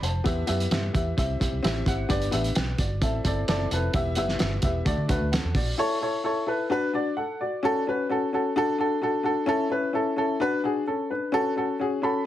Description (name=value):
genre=uptempo 1960s-style soul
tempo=130 BPM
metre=4/4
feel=straight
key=A major from 5.8 s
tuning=A4 = 441 Hz
part: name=dark upright piano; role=accompaniment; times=0.0-12.2 s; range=A3 to B5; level=-25 LUFS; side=left 1 dB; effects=none
part: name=vintage muted fingered electric bass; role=bass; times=0.0-5.7 s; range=E1 to D3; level=-28 LUFS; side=right 1 dB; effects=none
part: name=cloth-damped thuddy drum kit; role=drums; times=0.0-5.7 s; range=hi-hat, kick drum, snare drum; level=-28 LUFS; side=right 1 dB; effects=none
room=light reverb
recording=heavily compressed radio sound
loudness=-23 LUFS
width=side -12 dB against mid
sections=0.0-5.8 A section; 5.8-12.3 B section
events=upright piano fill 11.8-12.3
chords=0.3 Em; 1.2 C; 2.1 G; 3.0 Am; 3.9 Em; 4.9 D; 5.8 A; 6.7 Bm; 7.6 F#m; 8.6 D; 9.5 A; 10.4 Bm